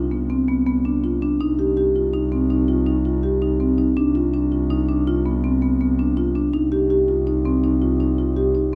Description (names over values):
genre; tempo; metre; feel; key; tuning
contemporary instrumental, chamber music in an uneven meter; 164 BPM; 7/4; straight; C harmonic minor; A4 = 439 Hz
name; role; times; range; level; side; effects
marimba with medium mallets; arpeggios; 0.0-8.7 s; B3 to G4; -21 LUFS; equal; none
warm double bass; bass; 0.0-8.8 s; C2; -26 LUFS; equal; none
room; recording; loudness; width
light reverb; none; -20 LUFS; mono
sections
0.0-8.8 A section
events
none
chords
0.0 Csus2; 1.4 Cm; 4.0 Csus2; 6.5 Cm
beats
0.30 0.67 1.03 | 1.40 1.77 2.13 2.50 2.87 3.23 3.60 | 3.97 4.34 4.70 5.07 5.44 5.80 6.17 | 6.54 6.90 7.27 7.63 8.00 8.36 8.73